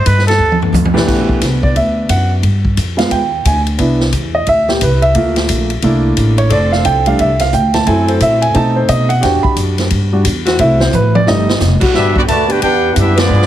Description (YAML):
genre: jazz, big band swing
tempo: 177 BPM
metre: 4/4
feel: swing 63% on 8ths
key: E minor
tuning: A4 = 440 Hz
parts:
  - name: warm trumpet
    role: melody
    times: 0.0-0.6 s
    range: A4 to B4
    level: -15 LUFS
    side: right 2 dB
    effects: none
  - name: upright bass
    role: bass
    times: 0.0-13.5 s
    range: F1 to B2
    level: -15 LUFS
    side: equal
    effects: none
  - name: swinging big-band drum kit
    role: drums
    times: 0.1-13.5 s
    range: crash cymbal, hi-hat, kick drum, ride cymbal, snare drum, toms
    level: -18 LUFS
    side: equal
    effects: none
  - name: clear baby grand piano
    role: accompaniment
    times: 0.9-11.8 s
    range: E3 to B5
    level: -14 LUFS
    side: right 1 dB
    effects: none
  - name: mellow saxophone section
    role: sustained chords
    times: 0.9-1.4, 6.5-13.5 s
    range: E3 to B4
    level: -20 LUFS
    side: left 2 dB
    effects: none
  - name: mellow trombone section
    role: second line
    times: 11.9-13.5 s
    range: F3 to G4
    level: -16 LUFS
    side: right 2 dB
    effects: none
  - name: warm trumpet section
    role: melody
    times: 12.0-13.5 s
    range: B3 to A5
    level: -15 LUFS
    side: equal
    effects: none
room: light reverb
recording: heavily compressed radio sound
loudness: -10 LUFS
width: side -12 dB against mid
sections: 0.0-1.1 A section; 1.1-11.9 A section; 11.9-13.5 B section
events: trumpet solo 0.0-1.1; drum fill 0.4-1.1, 10.9-11.6; grand piano solo 1.1-11.9; band accent 13.1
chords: 0.0 B7alt; 1.1 Em9; 2.4 G7b9; 3.8 Cmaj9; 5.2 A#maj7#11; 5.8 C13; 6.5 F6; 7.9 F#m7b5; 8.6 B7b9; 9.2 Em9; 10.6 F#m7b5; 11.3 F13; 11.9 Em9